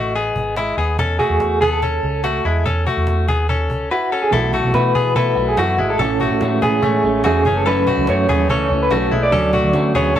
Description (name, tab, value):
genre	jangly indie pop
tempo	144 BPM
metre	4/4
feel	straight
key	unclear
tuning	A4 = 442 Hz
part	direct-recorded clean electric guitar	arpeggios	0.0-10.2 s	G#3 to B4	-20 LUFS	left 3 dB	none
part	vintage muted picked electric bass	bass	0.0-10.2 s	F#1 to D3	-21 LUFS	right 1 dB	none
part	cajon	drums	0.1-10.2 s	none	-28 LUFS	equal	none
part	electric guitar through a small old amp	melody	1.2-10.2 s	F#4 to D5	-20 LUFS	right 1 dB	tremolo, analog delay
part	electric guitar through a small old amp	accompaniment	4.3-10.2 s	F#2 to F#4	-21 LUFS	right 2 dB	harmonic tremolo
room	moderate studio ambience, RT60 0.5 s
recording	rough rehearsal-room recording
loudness	-15 LUFS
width	side -10 dB against mid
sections	0.0-4.3 A section; 4.3-10.2 B section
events	none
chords	0.0 Emaj7; 1.0 A; 4.3 B7sus4; 6.0 Amaj7; 7.5 F#m7; 9.3 Dmaj7